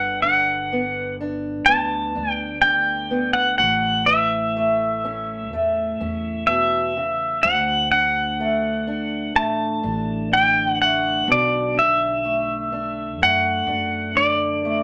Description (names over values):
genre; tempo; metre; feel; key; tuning
folk; 62 BPM; 4/4; straight; D major; A4 = 443 Hz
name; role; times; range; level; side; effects
pedal steel guitar; melody; 0.0-14.8 s; D5 to A5; -21 LUFS; equal; none
fingerpicked acoustic archtop guitar; accompaniment; 0.0-14.8 s; D2 to D4; -28 LUFS; equal; none
upright bass; bass; 0.0-14.8 s; G1 to F#2; -35 LUFS; equal; none
room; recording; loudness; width
moderate studio reverb, RT60 0.8 s; nothing above 10.7 kHz; -21 LUFS; mono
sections
0.0-14.8 A section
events
none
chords
0.0 Gmaj7; 3.6 A; 7.4 D; 11.3 Bm7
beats
0.71 1.67 2.63 | 3.59 4.55 5.51 6.47 | 7.43 8.39 9.36 10.32 | 11.28 12.24 13.20 14.16